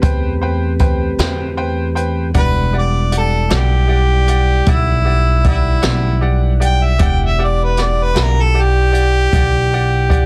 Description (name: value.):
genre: slow blues.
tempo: 52 BPM (dotted quarters).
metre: 12/8.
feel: straight.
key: E minor.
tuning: A4 = 440 Hz.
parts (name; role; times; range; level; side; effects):
bright grand piano; accompaniment; 0.0-10.3 s; G4 to G5; -27 LUFS; equal; none.
mellow tonewheel organ; sustained chords; 0.0-10.3 s; G3 to F#5; -28 LUFS; equal; slow rotary speaker.
upright bass; bass; 0.0-10.3 s; E1 to E2; -18 LUFS; equal; none.
jazz brush drum kit; drums; 0.0-10.3 s; hi-hat, kick drum, snare drum; -20 LUFS; equal; none.
mellow harmonica; melody; 2.4-10.3 s; E4 to G5; -20 LUFS; equal; none.
room: light reverb.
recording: dense, heavily limited modern master.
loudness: -15 LUFS.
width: mono.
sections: 0.0-10.3 A section.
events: harmonica solo 0.0-10.3.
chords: 0.0 Am9; 2.4 Em9.